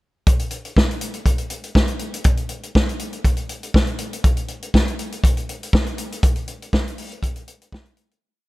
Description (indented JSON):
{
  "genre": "disco",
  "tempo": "121 BPM",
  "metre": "4/4",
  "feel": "straight",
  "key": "none",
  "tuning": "none",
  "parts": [
    { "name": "vintage drum kit", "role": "drums", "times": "0.3-8.2 s", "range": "hi-hat, kick drum, snare drum", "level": "-18 LUFS", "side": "equal", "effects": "none" }
  ],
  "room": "light reverb",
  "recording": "none",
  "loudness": "-19 LUFS",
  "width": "side -20 dB against mid",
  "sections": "0.3-8.2 breakdown",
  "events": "fade-out 6.2-8.2",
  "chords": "none"
}